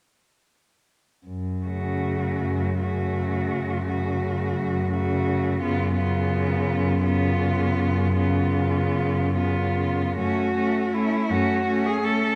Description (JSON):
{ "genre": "classical, lyrical piece for cello ensemble", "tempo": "46-58 BPM (dotted quarters)", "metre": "12/8", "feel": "rubato", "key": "F# minor", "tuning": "A4 = 441 Hz", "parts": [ { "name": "warm cello", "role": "bass", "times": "1.3-12.2 s", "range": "F#2", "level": "-28 LUFS", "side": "equal", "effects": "none" }, { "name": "warm cello", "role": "melody", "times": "1.7-12.4 s", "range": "E4 to A4", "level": "-31 LUFS", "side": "equal", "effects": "none" }, { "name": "clear cello", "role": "second line", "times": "1.7-12.4 s", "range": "A3 to C#4", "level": "-32 LUFS", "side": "equal", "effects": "none" }, { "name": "warm cello", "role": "accompaniment", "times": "1.7-12.4 s", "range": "C#3 to A3", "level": "-29 LUFS", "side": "equal", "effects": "none" } ], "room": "moderate recital hall reverb, RT60 1.7 s", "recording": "none", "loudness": "-24 LUFS", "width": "mono", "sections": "1.3-10.2 A section; 10.2-12.4 B section", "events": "none", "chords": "1.3 F#m", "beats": "| 1.27 2.42 3.51 4.57 | 5.61 6.68 7.79 8.96 | 10.19 11.30" }